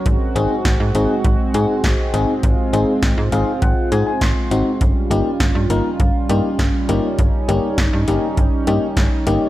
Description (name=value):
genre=synth-pop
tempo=101 BPM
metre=4/4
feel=straight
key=unclear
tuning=A4 = 444 Hz
part: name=chorused pulse-width pad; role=sustained chords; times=0.1-9.5 s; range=G3 to F#4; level=-22 LUFS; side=right 2 dB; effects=none
part: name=slap-like FM bass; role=bass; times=0.1-9.4 s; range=G1 to G#2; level=-20 LUFS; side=equal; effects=none
part: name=electro analog drum machine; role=drums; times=0.1-9.4 s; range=hi-hat, kick drum, snare drum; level=-19 LUFS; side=equal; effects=none
part: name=FM electric piano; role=accompaniment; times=0.4-9.5 s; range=A#3 to B#5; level=-21 LUFS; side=left 3 dB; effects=chorus
room=light reverb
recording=dark, warm production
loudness=-15 LUFS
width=side -15 dB against mid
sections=0.0-9.5 A section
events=FM electric piano fill 3.0-4.8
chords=0.1 G#7; 4.8 D#7/G